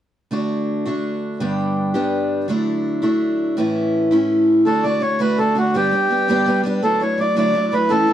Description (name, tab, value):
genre	celtic folk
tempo	111 BPM (dotted quarters)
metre	6/8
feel	straight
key	D major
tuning	A4 = 439 Hz
part	picked steel-string acoustic guitar	accompaniment	0.3-8.1 s	G2 to G4	-18 LUFS	equal	none
part	accordion	melody	4.7-8.1 s	F#4 to D5	-18 LUFS	equal	none
room	moderate studio ambience, RT60 0.5 s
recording	dark, warm production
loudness	-16 LUFS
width	side -11 dB against mid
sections	0.3-4.7 A section; 4.7-8.1 B section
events	none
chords	0.3 D; 1.4 G; 2.5 Dadd9; 3.6 A; 4.7 D; 5.7 G; 6.8 Dadd9